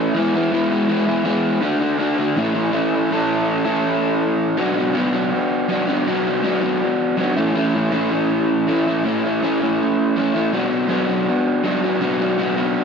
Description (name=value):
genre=rock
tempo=162 BPM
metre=4/4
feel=straight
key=A major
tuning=A4 = 442 Hz
part: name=crunchy overdriven guitar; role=solo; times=0.0-12.8 s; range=A2 to A4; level=-17 LUFS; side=equal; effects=tape echo
room=light reverb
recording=dark, warm production, nothing above 7.6 kHz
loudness=-17 LUFS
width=side -6 dB against mid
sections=0.0-3.1 A section; 3.1-4.6 B section; 4.6-12.8 C section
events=none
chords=0.2 E; 1.6 D; 2.4 A; 4.6 Bm; 7.4 A; 10.5 Bm